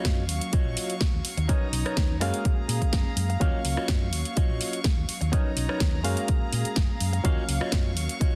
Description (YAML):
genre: filtered disco house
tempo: 125 BPM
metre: 4/4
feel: straight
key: Eb minor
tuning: A4 = 440 Hz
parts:
  - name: barky reed electric piano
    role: accompaniment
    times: 0.0-8.4 s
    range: Gb3 to F5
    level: -36 LUFS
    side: equal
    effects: overdrive, phaser, sidechain pumping
  - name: rich chamber string section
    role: sustained chords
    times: 0.0-8.4 s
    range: Gb3 to Db6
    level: -40 LUFS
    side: equal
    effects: sidechain pumping
  - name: mellow electric guitar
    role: riff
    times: 0.0-8.4 s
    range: D#4 to F5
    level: -37 LUFS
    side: equal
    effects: sidechain pumping
  - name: hollow-body short-scale fingered electric bass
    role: bass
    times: 0.0-8.2 s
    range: Gb1 to Bb2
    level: -31 LUFS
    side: equal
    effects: sidechain pumping
  - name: house drum kit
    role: drums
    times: 0.0-8.3 s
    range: hi-hat, rim click, snare drum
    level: -34 LUFS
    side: equal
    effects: sidechain pumping on hats
  - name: electronic kick drum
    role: drums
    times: 0.1-8.3 s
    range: none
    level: -27 LUFS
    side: equal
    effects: none
room: little or no reverb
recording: dense, heavily limited modern master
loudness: -26 LUFS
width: mono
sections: 0.0-8.4 A section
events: none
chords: 0.0 Ebm9; 1.5 Bmaj9; 2.2 Gbmaj9; 3.4 Ebm9; 5.3 Bmaj9; 6.0 Gbmaj9; 7.2 Ebm9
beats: 0.05 0.53 1.01 | 1.49 1.97 2.45 2.93 | 3.41 3.89 4.37 4.85 | 5.33 5.81 6.29 6.77 | 7.25 7.73 8.21